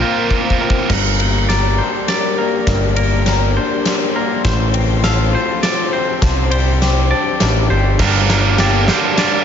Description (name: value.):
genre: post-rock.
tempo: 101 BPM.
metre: 3/4.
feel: straight.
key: G minor.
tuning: A4 = 440 Hz.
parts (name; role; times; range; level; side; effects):
dark analog pad; sustained chords; 0.0-9.4 s; F4 to D6; -25 LUFS; left 4 dB; chorus.
electric guitar through a small old amp; arpeggios; 0.0-9.4 s; G2 to Bb4; -22 LUFS; left 8 dB; slapback echo.
twangy electric guitar; arpeggios; 0.0-9.4 s; Bb4 to F5; -23 LUFS; right 2 dB; slapback echo.
tight distorted guitar; riff; 0.0-0.9, 8.0-9.4 s; G2 to Bb4; -18 LUFS; right 7 dB; distortion.
growling picked electric bass; bass; 0.0-8.9 s; G1 to C2; -16 LUFS; equal; overdrive.
huge arena drum kit; drums; 0.3-9.3 s; crash cymbal, kick drum, ride cymbal, snare drum; -18 LUFS; equal; none.
room: light reverb, studio ambience.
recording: nothing above 7.5 kHz.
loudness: -13 LUFS.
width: side -8 dB against mid.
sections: 0.9-9.4 A section.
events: drum fill 0.3-0.9, 0.9-9.4; build-up 0.9-9.4.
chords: 0.0 Bbsus2; 0.9 Gm; 4.5 F/A; 6.2 Cmadd9; 8.0 Gm.